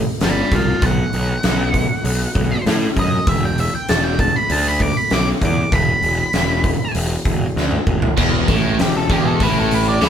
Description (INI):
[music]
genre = blues rock power trio and southern rock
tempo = 98 BPM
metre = 4/4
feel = straight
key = E minor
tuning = A4 = 439 Hz
[part]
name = octave-fuzz lead guitar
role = melody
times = 0.2-10.1 s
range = G4 to D6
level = -21 LUFS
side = equal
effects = distortion
[part]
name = fuzz picked electric bass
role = bass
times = 0.2-10.1 s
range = E1 to A2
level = -20 LUFS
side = equal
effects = overdrive
[part]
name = big rock drum kit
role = drums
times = 0.2-10.1 s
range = crash cymbal, hi-hat, kick drum, snare drum, toms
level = -19 LUFS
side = equal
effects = none
[part]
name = biting overdriven guitar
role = riff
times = 8.2-10.1 s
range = E2 to D3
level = -18 LUFS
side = equal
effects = none
[sound]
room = light reverb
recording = band playing live in one room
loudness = -15 LUFS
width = side -8 dB against mid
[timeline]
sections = 0.0-8.2 A section; 8.2-10.1 B section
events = lead electric guitar solo 0.0-8.2; drum fill 7.6-8.2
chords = 0.0 C5; 0.8 B5; 3.3 E5; 8.2 N.C.